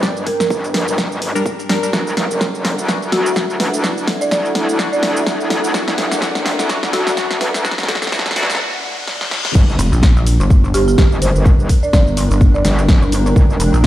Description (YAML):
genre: bass house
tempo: 126 BPM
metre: 4/4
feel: swing 57% on 16ths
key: unclear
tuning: A4 = 440 Hz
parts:
  - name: folk marimba with medium mallets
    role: melody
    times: 0.0-13.0 s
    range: F#4 to D5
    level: -21 LUFS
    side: right 1 dB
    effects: tape echo
  - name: dark analog pad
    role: sustained chords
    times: 0.0-13.9 s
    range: G3 to F#5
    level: -27 LUFS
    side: equal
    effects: lush chorus, sidechain pumping
  - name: band-passed chord stab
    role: stabs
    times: 0.0-8.5 s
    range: E3 to D5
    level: -24 LUFS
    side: left 1 dB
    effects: phaser, sidechain pumping, tape echo
  - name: metallic wobble bass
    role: bass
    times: 0.0-13.6 s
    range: E1 to D2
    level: -20 LUFS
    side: equal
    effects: distortion, chorus, overdrive, sidechain pumping, high-pass filter
  - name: electronic kick drum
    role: drums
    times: 0.0-13.9 s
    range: none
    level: -13 LUFS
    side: equal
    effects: high-pass filter on kick, small room ambience
  - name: house drum kit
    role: drums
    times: 0.0-13.9 s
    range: crash cymbal, hi-hat, shaker, snare drum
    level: -20 LUFS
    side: equal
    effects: small room ambience
  - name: granular cloud pad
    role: texture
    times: 0.0-13.9 s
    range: D4 to G5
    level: -26 LUFS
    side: right 1 dB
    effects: built-in reverb, sidechain pumping
  - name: riser, reverse cymbal and impact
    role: sound effects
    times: 4.2-11.5 s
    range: none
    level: -28 LUFS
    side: left 1 dB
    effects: none
  - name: pulsing pluck wobble bass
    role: bass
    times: 9.8-13.9 s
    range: F1 to Bb1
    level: -14 LUFS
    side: equal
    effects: chorus, tube saturation, sidechain pumping
room: light reverb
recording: played on a big sound system in a bare room, stone room reverb, high-pass filter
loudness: -13 LUFS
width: side -14 dB against mid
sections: 0.0-9.6 A section; 9.6-13.9 B section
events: build-up 0.0-9.6; drum fill 0.0-8.6, 9.1-9.6; filter sweep on analog synth pad 0.0-9.6; filter sweep 0.0-9.6; break 8.6-9.6; reverse cymbal 8.6-9.6; drop 9.6-13.9; impact 9.6-11.5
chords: 0.0 Gm; 1.9 Dadd9; 9.6 Gm